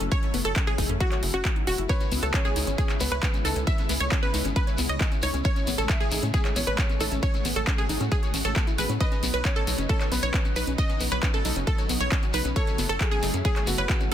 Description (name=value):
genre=uplifting trance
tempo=135 BPM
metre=4/4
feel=straight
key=C# minor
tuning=A4 = 440 Hz
part: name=wide unison pluck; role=melody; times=0.0-14.1 s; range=F#4 to E5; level=-31 LUFS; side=right 2 dB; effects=sidechain pumping, ping-pong delay
part: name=plucky unison lead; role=second line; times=0.0-14.1 s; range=F#4 to E5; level=-36 LUFS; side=left 1 dB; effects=sidechain pumping, ping-pong delay
part: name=analog string pad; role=sustained chords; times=0.0-14.1 s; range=C#3 to F#4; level=-34 LUFS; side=equal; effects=ensemble chorus, sidechain pumping
part: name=wide unison pluck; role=arpeggios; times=0.0-14.1 s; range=C#3 to C#5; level=-34 LUFS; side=left 2 dB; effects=sidechain pumping, ping-pong delay
part: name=tight sequencer bass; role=bass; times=0.0-14.1 s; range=E1 to A2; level=-29 LUFS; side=equal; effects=sidechain pumping
part: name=big-room dance drum kit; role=drums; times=0.0-14.1 s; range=handclaps, hi-hat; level=-31 LUFS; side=right 1 dB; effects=overdrive
part: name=electronic kick drum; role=drums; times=0.1-14.0 s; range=none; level=-25 LUFS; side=equal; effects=overdrive
part: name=warm grand piano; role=second line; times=1.9-14.1 s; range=F#4 to E5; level=-37 LUFS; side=equal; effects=ping-pong delay
part: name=shekere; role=percussion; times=1.9-14.1 s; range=none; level=-37 LUFS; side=left 5 dB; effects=none
room=digital ambience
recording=dense, heavily limited modern master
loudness=-22 LUFS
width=side -10 dB against mid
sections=0.0-14.1 A section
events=none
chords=0.0 F#m7; 1.9 C#m7; 5.5 Amaj7; 9.0 Badd9; 12.6 F#m7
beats=| 0.12 0.56 1.00 1.45 | 1.89 2.34 2.78 3.23 | 3.67 4.12 4.56 5.00 | 5.45 5.89 6.34 6.78 | 7.23 7.67 8.12 8.56 | 9.01 9.45 9.89 10.34 | 10.78 11.23 11.67 12.12 | 12.56 13.01 13.45 13.89